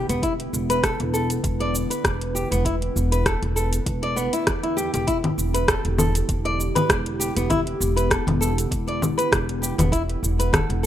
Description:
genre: organic downtempo.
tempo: 99 BPM.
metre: 4/4.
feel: swing 55% on 16ths.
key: E minor.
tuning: A4 = 440 Hz.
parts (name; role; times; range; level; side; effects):
warbly tape-like pad; sustained chords; 0.0-10.9 s; D3 to F#5; -30 LUFS; equal; chorus, built-in reverb, sidechain pumping.
flamenco guitar; arpeggios; 0.0-10.9 s; B3 to D5; -26 LUFS; left 1 dB; ping-pong delay.
upright bass; bass; 0.1-10.9 s; E1 to E2; -25 LUFS; equal; sidechain pumping.
afro-pop drum kit; drums; 0.1-10.8 s; congas, hi-hat, rim click, shaker; -24 LUFS; left 1 dB; studio reverb.
electronic kick drum; drums; 0.2-10.7 s; none; -28 LUFS; equal; studio reverb.
room: light reverb.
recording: rough home demo mix.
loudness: -20 LUFS.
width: side -11 dB against mid.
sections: 0.0-10.9 A section.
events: none.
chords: 0.0 Em7.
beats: | 0.23 0.83 1.44 2.05 | 2.65 3.26 3.86 4.47 | 5.08 5.68 6.29 6.89 | 7.50 8.11 8.71 9.32 | 9.93 10.53.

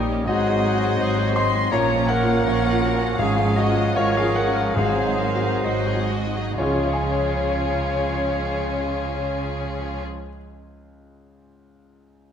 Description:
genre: classical, romantic movement for piano and orchestra.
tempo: 61-86 BPM.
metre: 4/4.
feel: rubato.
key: Db major.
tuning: A4 = 439 Hz.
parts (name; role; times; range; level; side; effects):
clear grand piano; melody; 0.0-12.3 s; Db2 to C6; -25 LUFS; left 1 dB; none.
rich chamber violin section; melody; 0.0-10.0 s; F4 to Bb4; -34 LUFS; left 1 dB; none.
bright clarinet; second line; 0.0-10.0 s; Gb4 to Db5; -32 LUFS; left 1 dB; none.
mellow cor anglais; second line; 0.0-10.0 s; C5 to F5; -33 LUFS; right 4 dB; none.
mellow bassoon; accompaniment; 0.0-10.0 s; F3 to Db4; -32 LUFS; left 1 dB; none.
rich chamber viola section; accompaniment; 0.0-10.0 s; F3 to Ab4; -31 LUFS; right 1 dB; none.
mellow French horn section; sustained chords; 0.0-10.0 s; F3 to Eb4; -31 LUFS; left 3 dB; none.
rich chamber double bass section; bass; 0.0-10.0 s; Ab1 to Db2; -28 LUFS; right 3 dB; none.
rich studio cello section; bass; 0.0-10.0 s; Ab2 to Db3; -29 LUFS; right 2 dB; none.
rich chamber violin section; second line; 0.3-10.0 s; F4 to C6; -31 LUFS; left 3 dB; none.
small flute group; second line; 0.3-10.0 s; F4 to Eb5; -29 LUFS; left 3 dB; none.
timpani; percussion; 3.2-10.0 s; Ab2 to Db3; -31 LUFS; left 1 dB; none.
room: wet recital hall reverb, RT60 1.6 s.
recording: dark, warm production.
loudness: -19 LUFS.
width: side -8 dB against mid.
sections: 0.0-6.6 A section; 6.6-10.3 B section.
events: slowing down 0.0-6.6.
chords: 0.3 Ab7; 1.7 Bbm; 3.2 Db/Ab; 4.8 Ab7; 6.6 Db.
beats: | 0.27 0.98 1.71 2.44 | 3.19 3.96 4.76 5.63 | 6.59 7.53 8.46 9.41.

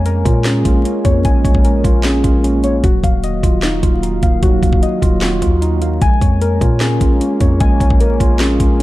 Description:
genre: hip hop, trap.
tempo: 151 BPM.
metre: 4/4.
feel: half-time.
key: unclear.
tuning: A4 = 440 Hz.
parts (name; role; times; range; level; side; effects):
mellow tine electric piano; accompaniment; 0.0-8.8 s; Gb3 to Ab4; -20 LUFS; right 4 dB; auto-pan, low-pass filter.
sweeping resonant pad; sustained chords; 0.0-8.8 s; Eb3 to F5; -25 LUFS; left 2 dB; chorus.
muted felt-like synth keys; arpeggios; 0.0-8.8 s; Db4 to Ab5; -20 LUFS; left 3 dB; chorus, low-pass filter, digital delay.
warm 808-style bass; bass; 0.0-8.8 s; Eb1 to Bb2; -17 LUFS; equal; none.
trap drum kit; drums; 0.1-8.8 s; handclaps, hi-hat, kick drum, snare drum; -15 LUFS; equal; none.
room: digital ambience.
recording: dark, warm production, vinyl crackle, lossy compression artefacts.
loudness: -11 LUFS.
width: side -16 dB against mid.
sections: 0.0-8.8 A section.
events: none.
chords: 0.0 Bbm7; 2.8 Ebmadd9; 6.0 Bbm7.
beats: 0.06 0.45 0.85 | 1.25 1.65 2.04 2.44 | 2.84 3.23 3.63 4.03 | 4.43 4.82 5.22 5.62 | 6.02 6.41 6.81 7.21 | 7.61 8.00 8.40 8.80.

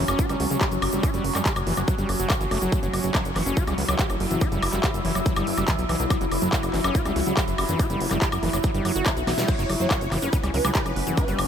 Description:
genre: psychedelic trance.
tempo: 142 BPM.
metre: 4/4.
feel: straight.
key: unclear.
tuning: A4 = 440 Hz.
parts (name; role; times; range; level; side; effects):
overtone-sweeping drone; sustained chords; 0.0-11.5 s; F#3 to E4; -28 LUFS; equal; chorus, built-in reverb, sidechain pumping.
overdriven acid bass; riff; 0.0-11.4 s; E3 to G4; -30 LUFS; equal; distortion, auto-pan, sidechain pumping, ping-pong delay.
plucky analog bass; bass; 0.0-11.4 s; F#1 to C#2; -27 LUFS; equal; none.
big-room dance drum kit; drums; 0.1-11.5 s; crash cymbal, handclaps, hi-hat, snare drum, woodblock; -28 LUFS; left 1 dB; small room ambience.
egg shaker; percussion; 0.1-11.4 s; none; -39 LUFS; left 3 dB; none.
electronic kick drum; drums; 0.2-11.3 s; none; -25 LUFS; equal; small room ambience.
swarming rave lead; melody; 9.5-11.4 s; B4 to C#5; -31 LUFS; right 2 dB; chorus, phaser, sidechain pumping, tape echo.
room: light reverb.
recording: none.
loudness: -21 LUFS.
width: side -8 dB against mid.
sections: 0.0-11.5 A section.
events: drum fill 9.3.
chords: 0.0 F#5.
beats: 0.19 0.61 | 1.03 1.46 1.88 2.30 | 2.72 3.15 3.57 3.99 | 4.41 4.84 5.26 5.68 | 6.10 6.53 6.95 7.37 | 7.79 8.22 8.64 9.06 | 9.48 9.91 10.33 10.75 | 11.18.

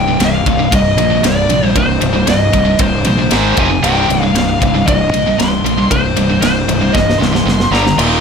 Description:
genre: heavy metal.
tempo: 116 BPM.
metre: 4/4.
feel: straight.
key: C minor.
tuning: A4 = 440 Hz.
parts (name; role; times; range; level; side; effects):
high-gain lead guitar; melody; 0.0-8.2 s; C5 to C6; -16 LUFS; left 2 dB; distortion.
heavy high-gain guitar; riff; 0.0-8.2 s; C2 to Ab3; -18 LUFS; left 13 dB; distortion.
high-gain distorted guitar; riff; 0.0-8.2 s; C2 to Ab3; -17 LUFS; right 11 dB; distortion.
fuzz fingered electric bass; bass; 0.0-8.2 s; C1 to Bb1; -18 LUFS; equal; overdrive.
tight metal drum kit; drums; 0.2-8.1 s; kick drum, ride cymbal, snare drum, splash cymbal; -18 LUFS; equal; none.
room: light reverb.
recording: none.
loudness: -10 LUFS.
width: side -6 dB against mid.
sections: 0.0-8.2 A section.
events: drum fill 6.9-8.0.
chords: 0.0 Cm; 3.3 Ab5; 3.6 F5; 3.8 Cm; 7.7 G5.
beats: 0.20 0.72 1.24 | 1.76 2.28 2.79 3.31 | 3.83 4.35 4.87 5.39 | 5.91 6.43 6.95 7.47 | 7.99.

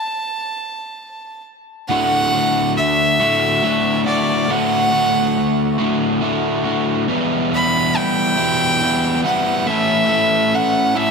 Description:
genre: rock.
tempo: 46 BPM (dotted quarters).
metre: 6/8.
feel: straight.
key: D major.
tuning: A4 = 440 Hz.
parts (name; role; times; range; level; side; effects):
warm violin; melody; 0.0-11.1 s; D5 to B5; -18 LUFS; right 1 dB; analog delay.
crunchy overdriven guitar; riff; 1.9-11.1 s; D2 to A4; -17 LUFS; equal; none.
room: moderate lush hall reverb, RT60 1.9 s, small room ambience.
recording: none.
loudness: -15 LUFS.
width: side -5 dB against mid.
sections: 0.0-1.9 A section; 1.9-11.1 B section.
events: none.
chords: 0.0 N.C.; 1.9 D; 7.1 Em; 9.7 A.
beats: 0.60 | 1.91 3.21 | 4.50 5.80 | 7.09 8.38 | 9.67 10.96.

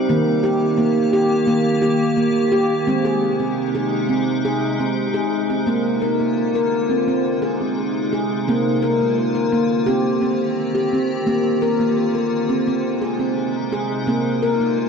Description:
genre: world meditative, meditative tuned percussion.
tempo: 86 BPM.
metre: 4/4.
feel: straight.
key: unclear.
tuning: A4 = 440 Hz.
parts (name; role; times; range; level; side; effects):
icy glass pad; sustained chords; 0.0-14.9 s; C3 to G4; -23 LUFS; left 2 dB; chorus, built-in reverb.
handpan; arpeggios; 0.0-14.9 s; Eb3 to Bb4; -18 LUFS; right 1 dB; ping-pong delay.
room: wet cathedral reverb, RT60 5.9 s.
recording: in a vast, echoing space.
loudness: -17 LUFS.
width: side -6 dB against mid.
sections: 0.0-5.7 A section; 5.7-14.9 B section.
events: none.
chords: 0.1 Eb; 2.9 Ab; 5.7 Bb; 7.1 Ab/C; 8.5 Bb; 9.9 Cm; 11.3 Bb; 12.7 Ab/C; 14.1 Bb.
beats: | 0.10 0.80 1.49 2.19 | 2.88 3.58 4.28 4.98 | 5.67 6.37 7.07 7.77 | 8.47 9.17 9.87 10.57 | 11.28 11.98 12.68 13.38 | 14.08 14.78.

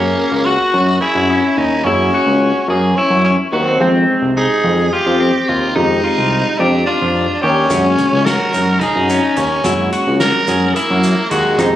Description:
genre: progressive instrumental, band music in an uneven meter.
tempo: 216 BPM (eighths).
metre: 7/8.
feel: straight.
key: unclear.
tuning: A4 = 440 Hz.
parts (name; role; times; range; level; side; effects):
growling tenor saxophone; melody; 0.0-11.8 s; G#3 to A#4; -16 LUFS; equal; plate reverb, ping-pong delay.
dark grand piano; accompaniment; 0.0-11.8 s; Eb3 to G5; -23 LUFS; right 2 dB; none.
clean electric guitar; arpeggios; 0.0-11.8 s; C4 to G#4; -18 LUFS; left 2 dB; wide subtle chorus.
fat analog bass; bass; 0.0-11.8 s; C2 to F#2; -17 LUFS; equal; none.
soft-mallet drum kit; drums; 7.7-11.7 s; hi-hat, kick drum, snare drum; -24 LUFS; equal; none.
tube shaker; percussion; 7.7-11.8 s; none; -32 LUFS; left 2 dB; none.
room: moderate studio reverb, RT60 0.6 s.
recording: recorded on a phone in the room, club reverb.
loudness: -12 LUFS.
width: side -12 dB against mid.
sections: 0.0-11.8 A section.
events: none.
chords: 0.0 F#add9; 3.8 Fm7; 7.7 F#add9.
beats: 0.19 0.47 0.75 1.02 1.30 1.58 | 1.86 2.14 2.42 2.70 2.98 3.25 3.53 | 3.81 4.09 4.37 4.65 4.92 5.20 5.48 | 5.76 6.04 6.32 6.59 6.87 7.15 7.43 | 7.70 7.98 8.26 8.54 8.81 9.09 9.37 | 9.65 9.92 10.20 10.48 10.76 11.03 11.31 | 11.59.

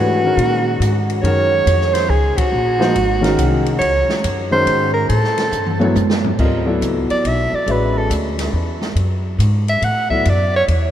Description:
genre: modal jazz.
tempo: 140 BPM.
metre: 3/4.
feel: swing 65% on 8ths.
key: D lydian from 6.4 s.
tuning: A4 = 438 Hz.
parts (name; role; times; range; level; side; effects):
breathy soprano saxophone; melody; 0.0-10.6 s; F#4 to F#5; -18 LUFS; right 1 dB; none.
warm grand piano; accompaniment; 0.0-10.2 s; D#3 to E5; -21 LUFS; left 2 dB; none.
upright bass; bass; 0.0-10.9 s; G#1 to A#2; -19 LUFS; equal; none.
open jazz drum kit; drums; 0.4-10.8 s; crash cymbal, hi-hat, kick drum, ride cymbal, snare drum, toms; -24 LUFS; right 1 dB; none.
room: wet cathedral reverb, RT60 5.3 s.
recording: in a vast, echoing space.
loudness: -14 LUFS.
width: side -10 dB against mid.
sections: 0.0-6.4 A section; 6.4-10.9 B section.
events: band accent 2.3; drum fill 5.5-6.4; soprano saxophone solo 6.4-10.9.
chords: 0.0 Emaj9; 1.2 F#maj9; 5.1 A7(no3); 6.4 Dmaj9.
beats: 0.38 0.81 | 1.24 1.67 2.09 | 2.52 2.95 3.38 | 3.81 4.24 4.67 | 5.10 5.53 5.96 | 6.39 6.82 7.25 | 7.68 8.11 8.54 | 8.97 9.40 9.82 | 10.25 10.68.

